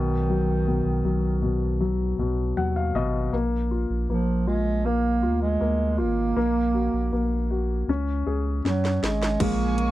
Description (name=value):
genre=pop ballad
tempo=79 BPM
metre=4/4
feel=straight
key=unclear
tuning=A4 = 444 Hz
part: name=mellow bass clarinet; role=melody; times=0.0-9.9 s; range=D#3 to Bb3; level=-26 LUFS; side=right 4 dB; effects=none
part: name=warm baby grand piano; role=accompaniment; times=0.0-9.9 s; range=B2 to F#5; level=-26 LUFS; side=left 4 dB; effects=none
part: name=warm sub bass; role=bass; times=0.0-9.9 s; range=Ab1 to Gb2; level=-26 LUFS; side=equal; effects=none
part: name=house drum kit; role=drums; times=8.7-9.9 s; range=crash cymbal, hi-hat, kick drum, snare drum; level=-29 LUFS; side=equal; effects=none
part: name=warm studio string section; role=sustained chords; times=9.4-9.9 s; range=Bb4 to Db6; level=-33 LUFS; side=equal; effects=none
part: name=fingerpicked steel-string acoustic guitar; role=arpeggios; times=9.4-9.9 s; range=Bb2 to F4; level=-31 LUFS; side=right 14 dB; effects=none
room=little or no reverb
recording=dry, close 1970s-style studio recording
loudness=-22 LUFS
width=side -15 dB against mid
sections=0.0-9.4 A section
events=grand piano fill 2.2-3.3; drum fill 8.6-9.4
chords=0.0 B; 3.3 Bb; 6.4 Gb/Bb; 7.9 Dbsus4; 9.4 Bbm7